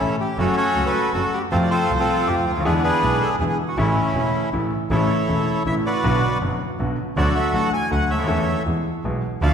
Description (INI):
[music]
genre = tango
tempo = 160 BPM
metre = 3/4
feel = rubato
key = A major from 4.9 s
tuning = A4 = 438 Hz
[part]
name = bandoneon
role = melody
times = 0.0-9.5 s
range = A3 to G#5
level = -21 LUFS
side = equal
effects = none
[part]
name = warm concert grand piano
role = accompaniment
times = 0.0-9.5 s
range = E1 to A4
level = -23 LUFS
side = left 1 dB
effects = none
[part]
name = warm double bass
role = bass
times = 0.0-9.5 s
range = E1 to F2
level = -26 LUFS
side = right 2 dB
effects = none
[sound]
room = wet scoring stage reverb, RT60 1.8 s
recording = recorded in a church or concert hall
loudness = -18 LUFS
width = side -7 dB against mid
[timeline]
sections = 0.0-4.9 A section; 4.9-9.5 B section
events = none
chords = 0.4 F#m; 1.5 F; 2.6 E7; 3.8 A; 6.0 Bm; 7.2 D; 8.3 A/E; 8.7 E